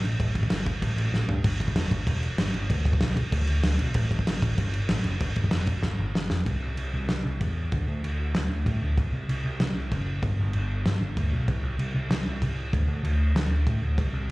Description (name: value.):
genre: punk rock.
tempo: 192 BPM.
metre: 4/4.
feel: straight.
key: D mixolydian from 6.5 s.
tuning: A4 = 440 Hz.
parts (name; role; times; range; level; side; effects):
overdriven picked electric bass; bass; 0.0-14.3 s; E1 to A2; -26 LUFS; equal; none.
loose indie drum kit; drums; 0.0-14.1 s; crash cymbal, kick drum, snare drum, toms; -28 LUFS; equal; none.
room: little or no reverb.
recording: live gig heard through the venue's PA, club reverb.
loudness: -24 LUFS.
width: side -21 dB against mid.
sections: 0.0-6.5 A section; 6.5-14.3 B section.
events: drum fill 1.1-1.4, 5.8-6.5; half time 6.5-14.3.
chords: none.